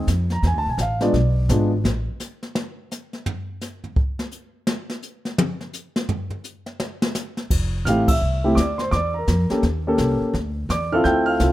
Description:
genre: jazz piano trio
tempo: 170 BPM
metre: 4/4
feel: swing 63% on 8ths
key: F major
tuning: A4 = 441 Hz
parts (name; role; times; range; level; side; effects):
- dark concert grand piano; melody; 0.0-1.7, 7.9-11.5 s; G#3 to G6; -20 LUFS; equal; none
- upright bass; bass; 0.0-2.1, 7.5-11.5 s; F1 to F2; -22 LUFS; equal; none
- jazz brush drum kit; drums; 0.1-11.5 s; brushed snare drum, crash cymbal, hi-hat, kick drum, snare drum, toms; -24 LUFS; equal; none
room: light reverb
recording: rough home demo mix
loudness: -20 LUFS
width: side -15 dB against mid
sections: 0.0-7.5 A section; 7.5-11.5 B section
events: grand piano solo 0.0-7.5; drum solo 1.8-7.5; band accent 8.0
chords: 0.4 E7b9 (rootless); 1.8 N.C.; 7.5 Fmaj7; 8.9 E7(b5, no3); 9.6 Eb7#11; 10.3 Dm7

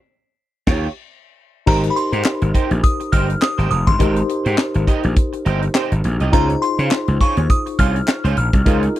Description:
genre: early-eighties boogie funk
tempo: 103 BPM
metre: 4/4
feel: swing 56% on 16ths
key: Ab major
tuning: A4 = 439 Hz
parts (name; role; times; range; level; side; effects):
- electric guitar at the edge of break-up; riff; 0.7-9.0 s; Db4 to Eb5; -25 LUFS; right 7 dB; ensemble chorus
- gritty slap bass; bass; 0.7-8.9 s; F1 to Db3; -18 LUFS; equal; overdrive
- tight funk drum kit; drums; 0.7-9.0 s; crash cymbal, handclaps, hi-hat, kick drum, snare drum; -17 LUFS; equal; none
- delicate synth tine bell; melody; 1.7-9.0 s; Bb5 to F6; -23 LUFS; equal; chorus, tape echo
- tine electric piano; accompaniment; 1.7-9.0 s; Eb4 to C5; -23 LUFS; left 2 dB; medium stereo tremolo
- group handclap; percussion; 2.2-8.2 s; none; -28 LUFS; left 4 dB; none
room: little or no reverb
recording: dry, close 1970s-style studio recording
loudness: -15 LUFS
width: side -14 dB against mid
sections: 0.0-1.7 A section; 1.7-9.0 B section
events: band accent 0.0-1.7; tine electric piano fill 0.5-1.7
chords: 0.0 Eb9; 1.7 Abmaj7; 6.3 Dbmaj7

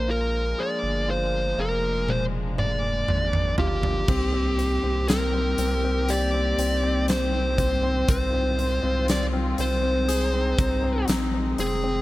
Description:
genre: pop ballad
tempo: 60 BPM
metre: 4/4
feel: straight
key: unclear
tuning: A4 = 437 Hz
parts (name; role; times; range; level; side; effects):
- fuzz lead guitar; melody; 0.0-12.0 s; G4 to D5; -26 LUFS; equal; distortion
- clear concert grand piano; accompaniment; 0.0-12.0 s; Bb3 to Ab4; -30 LUFS; left 3 dB; none
- warm studio string section; sustained chords; 0.0-12.0 s; Eb3 to G4; -33 LUFS; left 1 dB; none
- saturated sub bass; bass; 0.0-12.0 s; F1 to C2; -27 LUFS; equal; none
- huge arena drum kit; drums; 2.1-11.8 s; crash cymbal, hi-hat, kick drum, snare drum, toms; -28 LUFS; equal; none
room: small room reverb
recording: none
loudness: -21 LUFS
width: side -17 dB against mid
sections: 0.0-4.1 A section; 4.1-12.0 B section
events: drum fill 2.1-4.1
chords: 0.0 Bb7; 4.1 Cm7; 8.1 Fm7/C

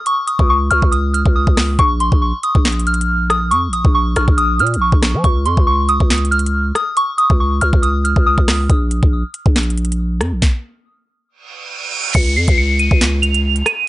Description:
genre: hip hop, drill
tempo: 139 BPM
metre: 4/4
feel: half-time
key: Bb minor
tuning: A4 = 440 Hz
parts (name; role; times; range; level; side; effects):
- soft synth bell; melody; 0.1-8.4, 12.1-13.8 s; C6 to F7; -16 LUFS; equal; chorus, phaser, low-pass filter, tape echo
- drill drum kit; drums; 0.1-13.8 s; crash cymbal, handclaps, hi-hat, kick drum, rim click, snare drum; -15 LUFS; equal; none
- growling 808-style bass; bass; 0.4-13.6 s; Bb1 to F3; -17 LUFS; equal; none
- reverse cymbal and downlifter; sound effects; 11.5-13.9 s; none; -24 LUFS; right 5 dB; none
room: little or no reverb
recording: dry, gritty hardware recording, cassette tape, nothing above 10.4 kHz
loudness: -13 LUFS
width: side -17 dB against mid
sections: 0.0-12.1 A section; 12.1-13.9 B section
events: break 8.7-12.1; stop 10.4-12.1; reverse cymbal 11.5-12.1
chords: 0.0 N.C.; 1.8 Bbm; 5.2 Db; 8.7 Bb5; 12.1 Db

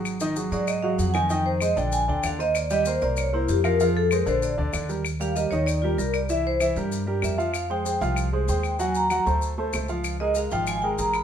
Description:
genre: Afro-Cuban jazz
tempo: 192 BPM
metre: 4/4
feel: straight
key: Eb major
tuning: A4 = 440 Hz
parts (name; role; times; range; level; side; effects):
- warm baby grand piano; accompaniment; 0.0-11.2 s; D3 to G5; -27 LUFS; right 2 dB; none
- upright bass; bass; 0.0-11.2 s; Ab1 to Ab2; -28 LUFS; equal; none
- claves; percussion; 0.1-11.2 s; none; -34 LUFS; left 8 dB; none
- maracas; percussion; 0.1-11.2 s; none; -38 LUFS; left 5 dB; none
- vibraphone with medium hard mallets; melody; 0.5-11.2 s; Fb4 to Cb6; -25 LUFS; left 1 dB; none
room: moderate studio reverb, RT60 0.8 s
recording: minimal, uncompressed stereo recording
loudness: -22 LUFS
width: side -8 dB against mid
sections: 0.0-5.0 A section; 5.0-11.2 A section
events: vibraphone solo 0.0-11.2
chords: 0.1 Ab5; 1.3 Fm7; 1.9 Bb; 2.6 Eb6; 3.2 Bbm69/C; 3.8 Fm; 4.4 Bb; 5.0 Eb; 6.3 C7; 7.5 Fm9; 8.8 Ebm; 9.4 D5; 10.0 Db6

